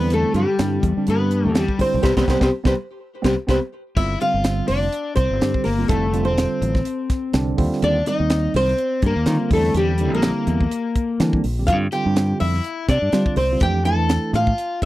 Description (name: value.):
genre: electric jazz fusion.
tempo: 124 BPM.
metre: 4/4.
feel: swing 55% on 16ths.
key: C major.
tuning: A4 = 439 Hz.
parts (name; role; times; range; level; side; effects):
flamenco guitar; melody; 0.0-14.9 s; G4 to A5; -23 LUFS; equal; none.
overdriven semi-hollow guitar; second line; 0.0-14.8 s; G3 to A4; -26 LUFS; left 5 dB; none.
bright tine electric piano; accompaniment; 0.0-14.5 s; D3 to G4; -25 LUFS; right 4 dB; medium stereo tremolo.
modern bright fingered electric bass; bass; 0.0-14.5 s; E1 to G3; -21 LUFS; equal; none.
tight funk drum kit; drums; 0.1-14.9 s; crash cymbal, hi-hat, kick drum, snare drum; -22 LUFS; equal; none.
room: little or no reverb.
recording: dry, close 1970s-style studio recording.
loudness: -17 LUFS.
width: side -16 dB against mid.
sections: 0.0-4.0 A section; 4.0-14.9 B section.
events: band accent 2.0-4.0; drum fill 3.0-4.0.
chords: 0.0 Cmaj9/E; 2.0 C5; 4.0 G5; 5.9 Fmaj9; 7.6 Eb69; 9.5 C9; 11.7 G5; 13.6 Fmaj9.